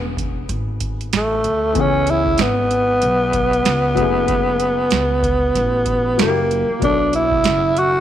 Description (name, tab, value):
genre	hip hop, jazz-hop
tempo	95 BPM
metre	4/4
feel	swing 57% on 16ths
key	unclear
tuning	A4 = 440 Hz
part	growling tenor saxophone	melody	0.0-8.0 s	A3 to F#4	-17 LUFS	right 1 dB	slapback echo
part	dark grand piano	accompaniment	0.0-8.0 s	B2 to C#5	-26 LUFS	left 14 dB	none
part	upright bass	bass	0.0-8.0 s	E1 to D2	-24 LUFS	equal	none
part	booming analog drum machine	drums	0.2-7.9 s	hi-hat, kick drum, snare drum	-24 LUFS	right 3 dB	overdrive
room	light reverb, studio reverb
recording	1960s-style stereo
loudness	-15 LUFS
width	side -11 dB against mid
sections	0.0-6.8 A section; 6.8-8.0 A section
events	none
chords	0.0 Amaj9; 1.8 C#m7; 4.0 F#m9; 6.2 F#7b9; 6.8 Bm9